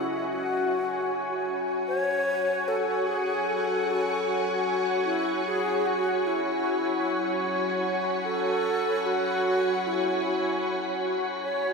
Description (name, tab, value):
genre	ambient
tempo	free time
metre	none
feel	none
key	F# minor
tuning	A4 = 442 Hz
part	breathy alto flute	melody	0.0-11.7 s	E4 to C#5	-29 LUFS	equal	ping-pong delay
part	soft additive organ-like pad	sustained chords	0.0-11.7 s	B3 to G#5	-26 LUFS	left 1 dB	ensemble chorus, built-in reverb
part	organ-like drone	drone	1.5-11.7 s	F#3	-46 LUFS	right 2 dB	ensemble chorus, built-in reverb, phaser
part	wind-like tuned noise texture	texture	1.0-11.7 s	B5	-43 LUFS	equal	built-in reverb, ensemble chorus
room	wet lush hall reverb, RT60 3.1 s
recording	dreamy mix soaked in reverb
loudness	-24 LUFS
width	side -4 dB against mid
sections	0.0-11.7 A section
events	fade-in on synth drone 0.0-11.7; fade-in on synth texture 0.0-11.7; filter sweep on ambient pad 0.0-11.7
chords	0.0 F#m7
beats	free time